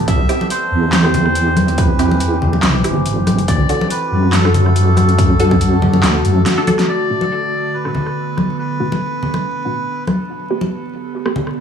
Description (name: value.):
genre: deep dubstep.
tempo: 141 BPM.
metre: 4/4.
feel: swing 55% on 16ths, half-time.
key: B phrygian.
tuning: A4 = 440 Hz.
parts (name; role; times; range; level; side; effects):
overtone-sweeping drone; sustained chords; 0.0-11.6 s; D3 to A4; -22 LUFS; equal; chorus, built-in reverb.
wobble bass; bass; 0.0-6.4 s; G1 to F#2; -14 LUFS; equal; chorus, tube saturation.
melodica; melody; 0.1-10.0 s; A4 to E5; -22 LUFS; equal; dub echo.
dubstep drum kit; drums; 0.1-11.5 s; handclaps, hi-hat, rim click, snare drum; -20 LUFS; equal; low-pass filter on hats, low-pass filter on snare.
electronic kick drum; drums; 0.1-5.6 s; none; -16 LUFS; equal; none.
filtered dub chord stab; stabs; 0.3-11.4 s; B2 to A4; -24 LUFS; right 1 dB; phaser, dub echo.
congas; percussion; 0.4-11.4 s; none; -20 LUFS; left 2 dB; none.
room: light reverb, digital ambience.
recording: vinyl crackle, studio ambience.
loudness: -13 LUFS.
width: side -7 dB against mid.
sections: 0.0-6.9 A section; 6.9-11.6 B section.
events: drum fill 6.5-6.9; filter sweep on drum 6.9-11.6; filter sweep on synth stab 6.9-11.6; filter sweep on synth drone 6.9-11.6.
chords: 0.1 C; 3.5 D; 6.9 Bm7; 10.3 Gadd9.